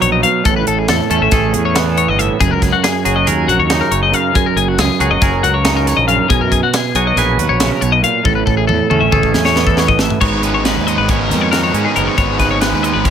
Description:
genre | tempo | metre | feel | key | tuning
math rock and midwest emo | 277 BPM (eighths) | 9/8 | straight | unclear | A4 = 438 Hz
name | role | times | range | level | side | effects
twangy electric guitar | accompaniment | 0.0-13.1 s | F#2 to B4 | -17 LUFS | right 9 dB | spring reverb, plate reverb
twelve-string electric guitar | arpeggios | 0.0-13.1 s | F#4 to E#5 | -16 LUFS | left 9 dB | warbly pitch drift, plate reverb
fuzz fingered electric bass | bass | 0.0-13.1 s | F#1 to G#2 | -18 LUFS | equal | overdrive
crisp fusion drum kit | drums | 0.0-13.1 s | crash cymbal, hi-hat, kick drum, snare drum, toms | -18 LUFS | equal | none
overdriven electric guitar | riff | 10.2-13.1 s | G#2 to D#4 | -19 LUFS | left 1 dB | none
room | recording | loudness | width
light reverb | none | -11 LUFS | side -8 dB against mid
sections
0.0-10.2 A section; 10.2-13.1 B section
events
drum fill 8.3-10.2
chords
0.5 Amaj9; 2.4 F#69; 6.3 Bmaj7; 8.3 Amaj9; 10.2 G#m11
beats
0.02 0.24 | 0.46 0.67 0.89 1.11 1.32 1.54 1.76 1.97 2.19 | 2.41 2.62 2.84 3.06 3.27 3.49 3.70 3.92 4.14 | 4.35 4.57 4.79 5.00 5.22 5.43 5.65 5.87 6.08 | 6.30 6.52 6.74 6.95 7.17 7.38 7.60 7.82 8.04 | 8.25 8.47 8.69 8.90 9.12 9.34 9.56 9.78 9.99 | 10.21 10.43 10.65 10.87 11.09 11.30 11.52 11.74 11.96 | 12.18 12.40 12.62 12.84 13.05

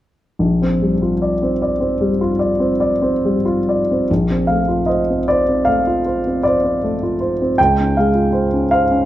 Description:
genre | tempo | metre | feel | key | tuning
classical, impressionist solo piano | 43-54 BPM (dotted quarters) | 9/8 | rubato | Bb major | A4 = 440 Hz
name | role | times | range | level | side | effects
warm grand piano | solo | 0.4-9.1 s | Bb1 to G5 | -14 LUFS | equal | none
room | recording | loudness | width
light reverb | dark, warm production | -14 LUFS | side -14 dB against mid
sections
0.4-4.1 A section; 4.1-9.1 B section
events
none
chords
0.4 Bb69; 4.1 Bbmaj9; 7.6 Dbmaj7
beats
| 0.40 1.60 2.77 | 4.08 5.27 6.44 | 7.57 8.71

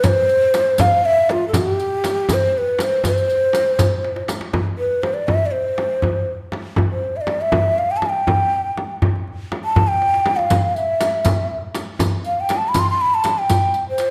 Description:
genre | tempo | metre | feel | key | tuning
Persian modal ensemble | 80 BPM (dotted quarters) | 6/8 | straight | C dastgah mahur | A4 = 441 Hz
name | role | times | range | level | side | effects
breathy mellow ney | melody | 0.0-14.1 s | F4 to C6 | -20 LUFS | equal | none
frame drum | percussion | 0.0-13.6 s | none | -27 LUFS | equal | none
riq | percussion | 0.0-4.4, 10.5-14.1 s | none | -34 LUFS | equal | none
tombak | percussion | 0.0-14.1 s | none | -26 LUFS | equal | none
room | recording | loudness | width
moderate recital hall reverb, RT60 1.4 s | none | -19 LUFS | mono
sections
0.0-4.5 A section; 4.5-14.1 B section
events
drum fill 4.0-4.5, 10.0-10.5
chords
none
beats
| 0.05 0.80 | 1.54 2.29 | 3.04 3.79 | 4.53 5.28 | 6.03 6.78 | 7.52 8.27 | 9.02 9.77 | 10.51 11.26 | 12.01 12.75 | 13.50

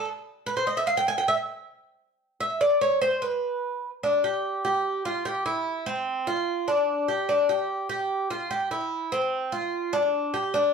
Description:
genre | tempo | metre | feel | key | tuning
latin | 147 BPM | 4/4 | straight | C major | A4 = 436 Hz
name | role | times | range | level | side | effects
Cuban tres | solo | 0.0-10.7 s | C4 to Ab5 | -24 LUFS | equal | slapback echo
room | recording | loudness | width
moderate large studio reverb, RT60 0.9 s | dark, warm production | -24 LUFS | side -6 dB against mid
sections
0.0-4.0 A section; 4.0-10.7 B section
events
Cuban tres solo 0.0-4.0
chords
none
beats
0.37 | 0.77 1.18 1.59 2.00 | 2.40 2.81 3.22 3.62 | 4.03 4.44 4.84 5.25 | 5.66 6.07 6.47 6.88 | 7.29 7.70 8.10 8.51 | 8.91 9.32 9.73 10.13 | 10.54

